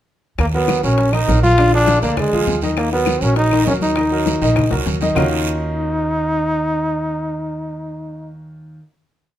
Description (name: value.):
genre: latin, salsa.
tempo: 201 BPM.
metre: 4/4.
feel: straight.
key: Eb minor.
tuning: A4 = 440 Hz.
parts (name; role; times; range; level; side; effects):
clear trombone; melody; 0.4-8.3 s; Ab3 to F4; -18 LUFS; equal; none.
upright bass; bass; 0.4-8.8 s; Bb1 to Eb2; -21 LUFS; right 1 dB; none.
bongos; percussion; 0.4-5.2 s; none; -27 LUFS; left 7 dB; none.
claves; percussion; 0.4-5.2 s; none; -30 LUFS; left 7 dB; none.
congas; percussion; 0.4-5.2 s; none; -25 LUFS; left 2 dB; none.
guiro; percussion; 0.4-5.2 s; none; -29 LUFS; right 7 dB; none.
clear upright piano; accompaniment; 0.5-8.8 s; D3 to Eb5; -22 LUFS; equal; none.
room: light reverb.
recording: minimal, uncompressed stereo recording.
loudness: -15 LUFS.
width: side -12 dB against mid.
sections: 0.4-5.2 A section; 5.2-7.6 final chord.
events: drum fill 4.7-5.2.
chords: 0.4 Ebm7; 1.6 Bb7; 2.8 Ebm; 5.2 Ebm9.